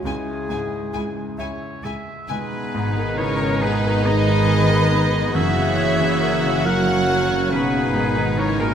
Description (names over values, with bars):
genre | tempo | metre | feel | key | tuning
cinematic, emotional film score for orchestra | 46 BPM (dotted quarters) | 6/8 | rubato | G# minor | A4 = 439 Hz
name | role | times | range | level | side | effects
concert flute | second line | 0.0-8.7 s | F#4 to G#5 | -30 LUFS | left 1 dB | none
clear baby grand piano | accompaniment | 0.0-8.7 s | C#2 to E5 | -27 LUFS | equal | none
mellow French horn section | sustained chords | 0.0-8.7 s | A#3 to F#4 | -28 LUFS | left 2 dB | none
concert harp | arpeggios | 0.0-8.7 s | F#2 to E6 | -31 LUFS | left 5 dB | none
warm studio cello section | bass | 0.0-8.7 s | A#2 to G#3 | -25 LUFS | right 4 dB | none
warm studio double bass section | bass | 0.0-8.7 s | F#1 to C#2 | -25 LUFS | right 2 dB | none
warm studio violin section | melody | 0.1-8.7 s | D#4 to G#5 | -28 LUFS | left 2 dB | none
clear clarinet | second line | 0.1-8.7 s | C#4 to A#4 | -30 LUFS | left 4 dB | none
clear studio violin section | second line | 0.1-8.7 s | E4 to F#5 | -30 LUFS | left 2 dB | none
warm studio viola section | accompaniment | 0.1-8.7 s | F#3 to C#4 | -30 LUFS | right 2 dB | none
bright oboe | second line | 1.4-8.7 s | A#4 to F#5 | -27 LUFS | right 2 dB | none
room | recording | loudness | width
moderate scoring stage reverb, RT60 1.6 s | none | -17 LUFS | side -8 dB against mid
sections
0.0-2.7 A section; 2.7-8.7 B section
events
none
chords
0.0 C#m; 2.7 G#m; 5.3 F#; 7.9 G#m